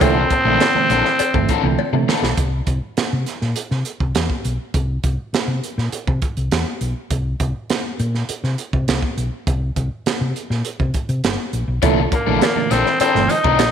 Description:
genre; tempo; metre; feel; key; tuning
funk; 102 BPM; 4/4; straight; C mixolydian; A4 = 440 Hz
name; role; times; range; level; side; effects
raspy tenor saxophone; melody; 0.0-2.1, 12.1-13.7 s; Bb3 to Eb4; -17 LUFS; equal; slapback echo
raw garage guitar; accompaniment; 0.0-2.3, 11.8-13.6 s; E3 to Bb4; -22 LUFS; left 10 dB; overdrive
tine electric piano; stabs; 0.0-2.1, 11.8-13.3 s; Bb2 to A3; -22 LUFS; right 10 dB; medium stereo tremolo
hollow-body short-scale fingered electric bass; bass; 0.0-13.7 s; G1 to C3; -21 LUFS; left 1 dB; none
crisp fusion drum kit; drums; 0.0-13.7 s; hi-hat, kick drum, snare drum; -22 LUFS; right 3 dB; none
cowbell; percussion; 0.0-1.9, 11.8-13.7 s; none; -26 LUFS; left 14 dB; none
room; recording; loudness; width
moderate echo chamber reverb, RT60 1.4 s, small room ambience; 1960s-style stereo with parts hard left and right; -17 LUFS; side -8 dB against mid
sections
0.0-2.4 A section; 2.4-11.8 B section; 11.8-13.7 A section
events
drum fill 1.8-2.4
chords
0.0 C13; 2.4 N.C.; 11.8 C13

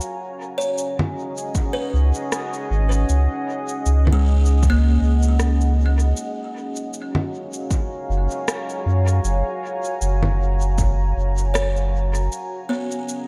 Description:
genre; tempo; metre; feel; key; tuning
ambient dub; 78 BPM; 4/4; swing 55% on 16ths; Db mixolydian; A4 = 440 Hz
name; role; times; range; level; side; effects
deep dark ambient pad; sustained chords; 0.0-13.3 s; Db4 to Bb5; -30 LUFS; equal; chorus, built-in reverb, vintage 12-bit sampler grit
electronic cabasa, congas and rim click; drums; 0.0-13.3 s; none; -30 LUFS; equal; dub echo
buzzing kalimba; arpeggios; 0.6-13.3 s; Ab3 to Db5; -30 LUFS; equal; delay
electronic kick drum; drums; 1.5-11.0 s; none; -24 LUFS; equal; overdrive
warm sub bass; bass; 1.9-12.3 s; Gb1 to Gb2; -20 LUFS; equal; none
room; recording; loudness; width
light reverb, digital ambience; none; -21 LUFS; mono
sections
0.0-13.3 A section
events
none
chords
0.0 Db9sus4; 6.2 Gbmaj9; 12.3 Db9sus4

